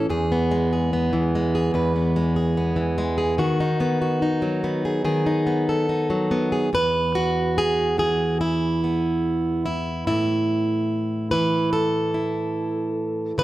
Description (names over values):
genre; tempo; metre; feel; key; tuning
folk, solo fingerstyle acoustic guitar; 73 BPM; 4/4; straight; E major; A4 = 440 Hz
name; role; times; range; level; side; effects
fingerpicked plugged-in steel-string acoustic guitar; solo; 0.0-13.4 s; E2 to B4; -20 LUFS; equal; none
room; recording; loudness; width
moderate large studio reverb, RT60 1.2 s; none; -20 LUFS; side -15 dB against mid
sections
0.0-6.7 A section; 6.7-13.4 B section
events
none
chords
0.1 E; 3.4 B/D#; 6.7 E5; 10.1 A5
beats
| 0.11 0.93 1.75 2.58 | 3.40 4.23 5.06 5.90 | 6.75 7.58 8.42 9.26 | 10.09 10.91 11.73 12.55 | 13.37